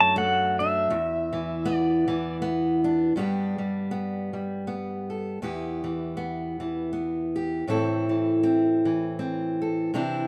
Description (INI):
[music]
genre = acoustic folk duo or small band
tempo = 80 BPM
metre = 3/4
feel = swing 57% on 8ths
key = E minor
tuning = A4 = 440 Hz
[part]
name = pedal steel guitar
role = melody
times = 0.0-2.4 s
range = E5 to A5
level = -25 LUFS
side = equal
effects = none
[part]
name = fingerpicked steel-string acoustic guitar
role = accompaniment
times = 0.0-10.3 s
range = E2 to A4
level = -27 LUFS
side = equal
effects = none
[sound]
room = light reverb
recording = none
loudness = -26 LUFS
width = mono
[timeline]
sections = 0.0-3.2 A section; 3.2-10.3 B section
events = none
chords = 0.0 D/F#; 0.9 E5; 3.2 G; 5.4 Em; 7.7 Am